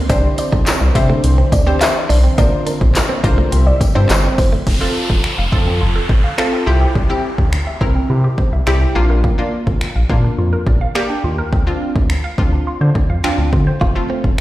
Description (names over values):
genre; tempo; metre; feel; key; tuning
dance-pop; 105 BPM; 4/4; straight; F major; A4 = 441 Hz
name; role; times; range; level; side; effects
ensemble organ-string; sustained chords; 0.0-4.7 s; C3 to E4; -25 LUFS; equal; ensemble chorus, sidechain pumping
direct-recorded clean electric guitar; riff; 0.0-4.6, 13.8-14.4 s; A3 to F4; -25 LUFS; right 4 dB; wide subtle chorus
soft round pluck; melody; 0.1-4.5 s; Bb4 to E5; -23 LUFS; left 1 dB; chorus, dub echo
analog pluck; accompaniment; 0.1-14.3 s; A3 to C5; -22 LUFS; equal; chorus, sidechain pumping
round analog bass; bass; 0.1-14.3 s; F1 to D3; -15 LUFS; equal; sidechain pumping
deep house drum kit; drums; 0.1-14.4 s; crash cymbal, finger snaps, handclaps, hi-hat, kick drum, snare drum; -17 LUFS; equal; none
tambourine; percussion; 0.1-4.5 s; none; -32 LUFS; left 5 dB; none
woody wave-folded pluck; arpeggios; 4.7-13.9 s; G3 to F5; -27 LUFS; right 2 dB; chorus, sidechain pumping, dub echo
downlifter; sound effects; 4.7-9.2 s; none; -26 LUFS; equal; none
room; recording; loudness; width
light reverb; played on a big sound system in a bare room, stone room reverb; -13 LUFS; side -16 dB against mid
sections
0.0-4.7 A section; 4.7-14.4 B section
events
drop 0.0-4.7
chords
0.1 Cadd9; 2.4 Bbadd9; 3.5 C; 4.7 F; 6.7 C; 9.0 Bb; 11.5 Dm7; 13.8 F